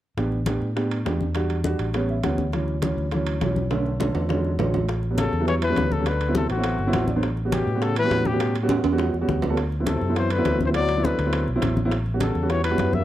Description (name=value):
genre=Afro-Cuban jazz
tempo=205 BPM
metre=4/4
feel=straight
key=A mixolydian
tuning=A4 = 443 Hz
part: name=warm baby grand piano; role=accompaniment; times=0.2-13.0 s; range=D3 to F#5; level=-26 LUFS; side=right 2 dB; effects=none
part: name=fingered electric bass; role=bass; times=0.2-13.0 s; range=G1 to A2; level=-26 LUFS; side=equal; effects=none
part: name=bongos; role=percussion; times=0.2-12.9 s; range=none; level=-35 LUFS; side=left 8 dB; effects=none
part: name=congas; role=percussion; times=0.2-13.0 s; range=none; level=-29 LUFS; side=left 2 dB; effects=none
part: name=timbales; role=percussion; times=0.2-12.9 s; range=none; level=-31 LUFS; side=right 6 dB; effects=none
part: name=breathy trumpet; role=melody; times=5.2-13.0 s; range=F#4 to E5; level=-27 LUFS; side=left 3 dB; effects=slapback echo
part: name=mellow trombone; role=second line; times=5.2-13.0 s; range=A2 to Bb3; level=-30 LUFS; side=left 5 dB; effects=none
room=small room ambience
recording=dry, close 1970s-style studio recording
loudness=-21 LUFS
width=side -13 dB against mid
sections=0.2-4.9 A section; 4.9-13.0 B section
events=grand piano fill 1.9-2.5, 6.8-7.2; drum fill 3.7-4.9, 8.7-9.6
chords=0.2 A7sus4; 1.4 Em9; 1.9 A7; 2.5 Dmaj9; 3.7 Bm7; 4.3 E13; 4.9 A13; 6.1 D13; 7.2 A13; 9.6 D13; 11.9 A13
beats=| 0.17 0.46 0.76 1.05 | 1.35 1.65 1.94 2.24 | 2.53 2.83 3.12 3.42 | 3.71 4.01 4.30 4.59 | 4.89 5.18 5.48 5.77 | 6.06 6.36 6.65 6.94 | 7.23 7.53 7.82 8.11 | 8.40 8.70 8.99 9.28 | 9.57 9.87 10.16 10.45 | 10.74 11.04 11.33 11.62 | 11.91 12.21 12.50 12.79